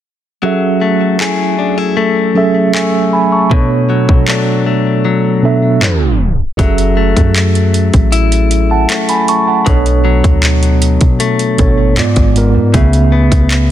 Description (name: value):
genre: contemporary R&B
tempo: 78 BPM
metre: 4/4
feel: straight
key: F# minor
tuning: A4 = 441 Hz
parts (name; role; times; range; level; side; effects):
- mellow tine electric piano; accompaniment; 0.4-13.7 s; G#2 to C#6; -13 LUFS; right 4 dB; medium stereo tremolo
- direct-recorded clean electric guitar; arpeggios; 0.4-13.7 s; G#2 to G#4; -16 LUFS; left 8 dB; digital delay
- trap drum kit; drums; 1.2-13.7 s; handclaps, hi-hat, kick drum; -14 LUFS; equal; vintage 12-bit sampler grit
- soft 808-style bass; bass; 6.6-13.7 s; F#1 to B2; -12 LUFS; equal; none
room: light reverb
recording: dense, heavily limited modern master, tape stop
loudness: -9 LUFS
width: side -11 dB against mid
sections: 0.4-6.6 A section; 6.6-13.7 B section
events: kick muted 5.0-6.6; tape stop 5.8-6.6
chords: 0.4 F#m9; 3.5 Bm7; 5.8 G#dim7; 6.6 F#m9; 9.7 Bm7; 12.0 G#dim7; 12.7 Amaj9/C#